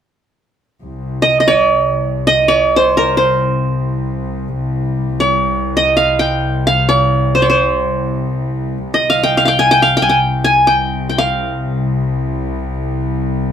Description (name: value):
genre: arabic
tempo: free time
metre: none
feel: none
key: C maqam bayati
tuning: A4 = 440 Hz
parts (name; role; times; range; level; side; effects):
- muted studio cello section; drone; 0.8-13.5 s; C2; -19 LUFS; left 1 dB; none
- qanun; melody; 1.2-13.1 s; Bb4 to Ab5; -12 LUFS; right 1 dB; none
room: wet small room reverb, RT60 0.5 s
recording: band playing live in one room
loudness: -12 LUFS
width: side -8 dB against mid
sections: 0.8-13.5 A section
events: none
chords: none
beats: free time